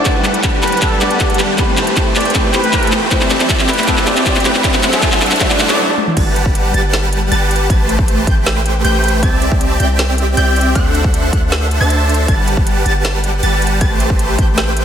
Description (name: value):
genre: future bass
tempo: 157 BPM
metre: 4/4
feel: half-time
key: G major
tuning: A4 = 439 Hz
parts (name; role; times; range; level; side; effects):
- trumpet with plunger mute; melody; 0.0-5.8 s; A4 to D5; -21 LUFS; equal; sidechain pumping, low-pass filter, analog delay
- clear grand piano; accompaniment; 0.0-6.2 s; A3 to B5; -22 LUFS; left 1 dB; analog chorus, sidechain pumping, analog delay
- ethereal airy pad; sustained chords; 0.0-5.8 s; F#3 to B5; -26 LUFS; left 2 dB; none
- supersaw chords; riff; 0.0-14.8 s; G3 to A5; -17 LUFS; equal; wide subtle chorus, sidechain pumping, low-pass filter, analog delay
- riser; sound effects; 0.0-5.8 s; none; -25 LUFS; right 1 dB; none
- electronic kick drum; drums; 0.1-14.5 s; none; -16 LUFS; equal; none
- trap drum kit; drums; 0.1-14.8 s; crash cymbal, handclaps, hi-hat, snare drum, toms; -18 LUFS; equal; none
- wide unison pluck; arpeggios; 6.2-14.8 s; F#6 to A6; -23 LUFS; right 1 dB; sidechain pumping
- long sustained 808-style bass; bass; 6.2-14.8 s; G1 to D2; -16 LUFS; equal; sidechain pumping
room: wet lush hall reverb, RT60 2.3 s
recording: dreamy mix soaked in reverb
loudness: -11 LUFS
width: side -8 dB against mid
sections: 0.0-6.2 A section; 6.2-14.8 B section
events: build-up 0.0-6.2; drum fill 0.0-5.8, 6.0; riser 0.0-5.8; stop 5.8-6.2; drop 6.2-14.8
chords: 0.1 Gmaj9; 1.6 Am9; 3.1 C6; 4.6 D9; 6.2 Gmaj9; 7.7 Am9; 9.2 C6; 10.8 D9; 12.3 Gmaj9; 13.8 Am9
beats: | 0.06 0.44 0.82 1.20 | 1.58 1.97 2.35 2.73 | 3.11 3.50 3.88 4.26 | 4.64 5.02 5.41 5.79 | 6.17 6.55 6.93 7.32 | 7.70 8.08 8.46 8.85 | 9.23 9.61 9.99 10.37 | 10.76 11.14 11.52 11.90 | 12.29 12.67 13.05 13.43 | 13.81 14.20 14.58